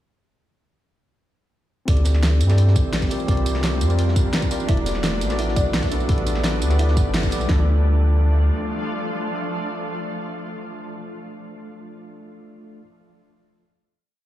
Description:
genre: liquid drum and bass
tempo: 171 BPM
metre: 4/4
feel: straight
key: D dorian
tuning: A4 = 440 Hz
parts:
  - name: mellow tine electric piano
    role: accompaniment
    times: 1.9-12.8 s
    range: A3 to D5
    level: -28 LUFS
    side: equal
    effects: fast stereo tremolo, dub echo
  - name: shimmering ambient pad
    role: sustained chords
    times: 2.4-11.0 s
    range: E3 to F4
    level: -30 LUFS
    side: equal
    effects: chorus, built-in reverb
  - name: sub bass with octave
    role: bass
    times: 1.9-8.5 s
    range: E1 to G2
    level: -19 LUFS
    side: equal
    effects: none
  - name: crunchy breakbeat drum kit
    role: drums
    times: 1.9-7.4 s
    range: hi-hat, snare drum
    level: -35 LUFS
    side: equal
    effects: high-pass filter on hats, high-pass filter on snare, high-pass filter on room
  - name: pop drum kit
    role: drums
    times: 1.9-7.6 s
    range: kick drum, snare drum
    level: -21 LUFS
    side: equal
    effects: none
  - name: pop drum kit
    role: drums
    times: 1.9-7.5 s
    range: hi-hat, snare drum, tambourine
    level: -27 LUFS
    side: equal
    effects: none
  - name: thumb-piano-like synth pluck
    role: arpeggios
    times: 4.7-7.7 s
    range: A3 to D5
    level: -31 LUFS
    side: right 2 dB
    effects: chorus, digital delay
room: light reverb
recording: played on a big sound system in a bare room, stone room reverb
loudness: -18 LUFS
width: side -13 dB against mid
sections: 1.9-7.5 drop; 7.5-10.3 final chord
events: drop 1.9-7.5; band accent 7.1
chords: 1.9 D9sus4; 3.1 C9sus4; 4.7 E9sus4; 6.1 A9sus4; 7.5 Dm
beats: | 1.88 2.23 2.58 2.93 | 3.28 3.63 3.98 4.34 | 4.69 5.04 5.39 5.74 | 6.09 6.44 6.79 7.14 | 7.49 7.84 8.20 8.55 | 8.90 9.25 9.60 9.95

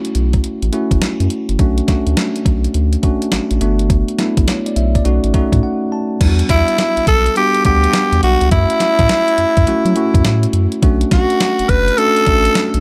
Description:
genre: R&B, new jack swing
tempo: 104 BPM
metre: 4/4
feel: swing 64% on 16ths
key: E dorian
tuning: A4 = 441 Hz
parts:
  - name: bell-like tine electric piano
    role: accompaniment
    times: 0.0-12.8 s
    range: G3 to A5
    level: -21 LUFS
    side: equal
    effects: none
  - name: crisp 8-bit digital drum machine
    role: drums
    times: 0.0-12.8 s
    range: crash cymbal, hi-hat, kick drum, snare drum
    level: -19 LUFS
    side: equal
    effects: none
  - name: round analog bass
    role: bass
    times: 0.2-12.8 s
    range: F#1 to F#3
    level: -18 LUFS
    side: equal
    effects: none
  - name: growling tenor saxophone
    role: melody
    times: 6.5-12.8 s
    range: E4 to B4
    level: -17 LUFS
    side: equal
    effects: none
room: little or no reverb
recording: none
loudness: -15 LUFS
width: mono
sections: 0.0-6.2 A section; 6.2-12.8 B section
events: tine electric piano fill 5.3-6.2; break 5.6-6.2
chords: 0.0 F#m7; 1.6 Bm7; 3.6 Gmaj7; 5.1 B7 (rootless); 6.2 Em7; 8.5 F#m7; 10.8 Bm7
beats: 0.44 1.02 | 1.59 2.17 2.75 3.33 | 3.90 4.48 5.06 5.63 | 6.21 6.79 7.36 7.94 | 8.52 9.10 9.67 10.25 | 10.82 11.40 11.98 12.56

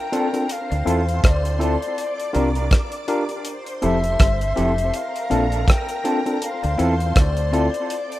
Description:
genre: lovers rock reggae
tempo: 81 BPM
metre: 4/4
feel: swing 57% on 16ths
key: unclear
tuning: A4 = 440 Hz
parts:
  - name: reedy FM lead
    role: melody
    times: 0.0-8.2 s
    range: D5 to G5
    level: -26 LUFS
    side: left 2 dB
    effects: chorus, tape echo
  - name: string machine, violins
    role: second line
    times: 0.0-8.2 s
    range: Bb4 to D6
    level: -32 LUFS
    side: equal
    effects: ensemble chorus, tape echo
  - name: tine electric piano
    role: accompaniment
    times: 0.1-7.7 s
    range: C4 to Bb4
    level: -25 LUFS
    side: left 2 dB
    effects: medium stereo tremolo, tape echo
  - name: electric guitar through a small old amp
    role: stabs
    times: 0.1-7.7 s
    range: Bb3 to Bb4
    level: -30 LUFS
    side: right 4 dB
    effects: tape echo
  - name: damped 70s drum kit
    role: drums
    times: 0.1-8.2 s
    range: hi-hat, kick drum, rim click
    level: -19 LUFS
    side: equal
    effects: none
  - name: electric guitar through a small old amp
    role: riff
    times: 0.7-7.4 s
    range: F3 to E4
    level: -31 LUFS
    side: left 3 dB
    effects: none
  - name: deep dub fingered electric bass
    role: bass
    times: 0.7-7.7 s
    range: F1 to E2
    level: -22 LUFS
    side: equal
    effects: none
room: light reverb, small room ambience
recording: rough home demo mix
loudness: -18 LUFS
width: side -16 dB against mid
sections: 0.0-8.2 A section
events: none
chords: 0.5 Dm7; 2.0 C9sus4; 3.5 Fmaj7; 4.9 Bbmaj7; 6.4 Dm7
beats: | 0.49 1.24 1.98 2.71 | 3.46 4.20 4.93 5.67 | 6.42 7.16 7.89

